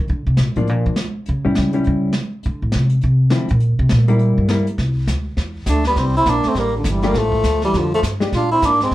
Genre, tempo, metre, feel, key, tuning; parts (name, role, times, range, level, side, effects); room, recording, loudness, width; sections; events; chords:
jazz, small-group swing and bop; 204 BPM; 4/4; swing 61% on 8ths; C major from 4.8 s; A4 = 440 Hz
upright bass; bass; 0.0-8.9 s; G1 to D3; -18 LUFS; equal
jazz brush drum kit; drums; 0.1-8.9 s; brushed snare drum, hi-hat, kick drum, snare drum; -26 LUFS; equal
hollow-body jazz guitar; accompaniment; 0.6-4.7, 7.0-8.3 s; D3 to G4; -20 LUFS; left 2 dB
warm tenor saxophone; melody; 5.7-8.9 s; D3 to F4; -17 LUFS; equal
trombone with metal mute; second line; 5.7-8.9 s; Bb2 to D4; -24 LUFS; right 5 dB
moderate club reverb, RT60 0.5 s; heard from further back in the room; -15 LUFS; side -16 dB against mid
0.0-4.8 A section; 4.8-8.9 B section
upright bass solo 0.0-4.8
0.1 Bb; 1.3 A7 (rootless); 2.4 Dm9; 3.6 Gm; 4.2 Gm6; 4.8 Cadd9; 6.0 C5; 7.2 F69; 8.3 Bb